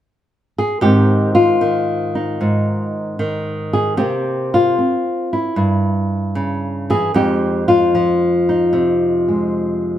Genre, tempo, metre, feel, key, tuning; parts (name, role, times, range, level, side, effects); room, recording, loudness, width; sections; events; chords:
solo jazz; 76 BPM; 4/4; swing 68% on 8ths; Ab major; A4 = 440 Hz
flamenco guitar; solo; 0.6-10.0 s; F2 to Ab4; -15 LUFS; equal
wet large studio reverb, RT60 0.9 s; band playing live in one room; -15 LUFS; side -11 dB against mid
0.8-10.0 A section
0.0 N.C.; 0.8 Ab6; 4.0 C7; 7.1 Fm7